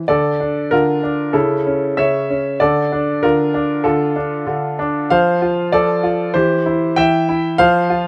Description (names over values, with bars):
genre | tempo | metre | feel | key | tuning
classical-period piano sonatina | 96 BPM | 4/4 | straight | D minor | A4 = 440 Hz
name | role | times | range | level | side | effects
clear baby grand piano | solo | 0.0-8.1 s | C#3 to G5 | -17 LUFS | equal | none
room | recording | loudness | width
light reverb | none | -17 LUFS | mono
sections
0.1-8.1 A section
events
none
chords
0.1 Dm; 1.3 A/C#; 2.6 Dm; 5.1 F; 6.3 C/E